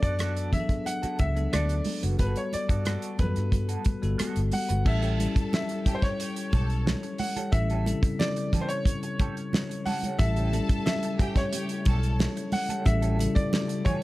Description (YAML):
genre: lush 1970s-style soul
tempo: 90 BPM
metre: 4/4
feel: straight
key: unclear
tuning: A4 = 440 Hz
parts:
  - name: bright concert grand piano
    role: melody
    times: 0.0-14.0 s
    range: B4 to F#5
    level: -33 LUFS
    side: equal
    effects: none
  - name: bell-like tine electric piano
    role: accompaniment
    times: 0.0-14.0 s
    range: C#3 to A4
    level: -32 LUFS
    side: left 3 dB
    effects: none
  - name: electric guitar through a small old amp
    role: riff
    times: 0.0-14.0 s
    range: B3 to B4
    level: -41 LUFS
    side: right 5 dB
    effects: wah, tremolo
  - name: vintage muted fingered electric bass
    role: bass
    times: 0.0-13.4 s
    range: F#1 to G2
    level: -27 LUFS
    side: equal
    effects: none
  - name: damped 70s drum kit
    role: drums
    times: 0.0-14.0 s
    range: crash cymbal, hi-hat, kick drum, rim click, snare drum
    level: -27 LUFS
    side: equal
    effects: none
  - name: congas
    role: percussion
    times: 0.2-14.0 s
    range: none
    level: -35 LUFS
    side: right 3 dB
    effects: none
  - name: rich studio violin section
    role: second line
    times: 4.9-12.1 s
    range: G4 to A5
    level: -40 LUFS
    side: left 2 dB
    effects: none
  - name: percussive tonewheel organ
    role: sustained chords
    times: 10.2-14.0 s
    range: C#3 to F#4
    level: -38 LUFS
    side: right 2 dB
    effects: none
room: little or no reverb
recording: none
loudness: -24 LUFS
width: side -18 dB against mid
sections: 0.0-4.9 A section; 4.9-14.0 B section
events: none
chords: 0.0 D6; 2.2 Gmaj9; 4.9 A7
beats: 0.19 0.86 1.53 | 2.19 2.86 3.53 4.20 | 4.86 5.53 6.20 6.86 | 7.53 8.20 8.86 9.53 | 10.19 10.86 11.53 12.19 | 12.86 13.53